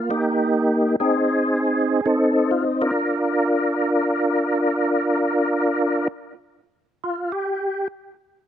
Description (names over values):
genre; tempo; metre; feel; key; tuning
jazz; free time; none; none; Bb mixolydian; A4 = 440 Hz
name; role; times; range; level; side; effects
percussive tonewheel organ; solo; 0.0-7.9 s; Bb3 to Bb4; -19 LUFS; equal; slow rotary speaker, chorus vibrato
room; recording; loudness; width
little or no reverb; recorded outdoors, with no room sound; -19 LUFS; side -10 dB against mid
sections
0.0-6.6 A section; 6.6-8.5 B section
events
tonewheel organ solo 6.6-8.5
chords
0.0 Cm7 (rootless); 1.1 F; 2.9 Bb; 6.6 N.C.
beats
free time